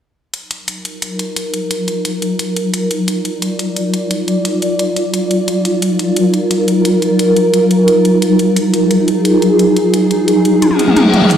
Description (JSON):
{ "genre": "dark technical drum and bass", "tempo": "175 BPM", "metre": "4/4", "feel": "straight", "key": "Eb harmonic minor", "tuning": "A4 = 440 Hz", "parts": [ { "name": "swarming drone", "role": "sustained chords", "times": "1.1-11.4 s", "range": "Gb3 to D5", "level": "-12 LUFS", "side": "equal", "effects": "built-in reverb" }, { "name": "dubstep drum kit", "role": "drums", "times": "0.3-11.4 s", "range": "hi-hat, toms", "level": "-19 LUFS", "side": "left 1 dB", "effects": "overdrive" }, { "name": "reverse cymbal", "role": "sound effects", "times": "10.7-11.3 s", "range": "none", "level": "-16 LUFS", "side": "left 4 dB", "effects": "none" } ], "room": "wet digital room reverb, RT60 1.1 s", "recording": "played on a big sound system in a bare room, stone room reverb", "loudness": "-12 LUFS", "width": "side -9 dB against mid", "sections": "0.3-11.4 A section", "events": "filter sweep on synth drone 0.3-11.4; drum fill 10.6-11.3; reverse cymbal 10.7-11.3", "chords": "0.3 Ebmadd9" }